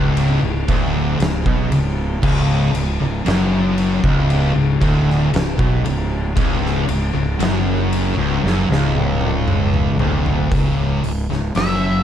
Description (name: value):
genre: stoner and doom metal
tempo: 58 BPM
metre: 4/4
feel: straight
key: unclear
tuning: A4 = 440 Hz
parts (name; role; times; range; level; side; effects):
- distorted electric guitar; riff; 0.0-10.5 s; C#2 to B2; -25 LUFS; right 1 dB; overdrive
- thick fuzz guitar; riff; 0.0-12.0 s; C#2 to B2; -21 LUFS; left 6 dB; distortion
- thick fuzz guitar; riff; 0.0-12.0 s; C#2 to B2; -22 LUFS; right 7 dB; distortion
- fuzz fingered electric bass; bass; 0.0-12.0 s; C#1 to B1; -22 LUFS; equal; overdrive
- oversized low-tuned drum kit; drums; 0.2-11.8 s; crash cymbal, hi-hat, kick drum, ride cymbal, snare drum, toms; -22 LUFS; equal; none
- octave-fuzz lead guitar; melody; 11.6-12.0 s; E5; -21 LUFS; equal; wah, distortion
room: light reverb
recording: dark, warm production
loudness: -15 LUFS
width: side -10 dB against mid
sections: 0.0-10.5 A section; 10.5-12.0 B section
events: drum fill 8.4-10.5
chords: 0.0 Bmadd9/C#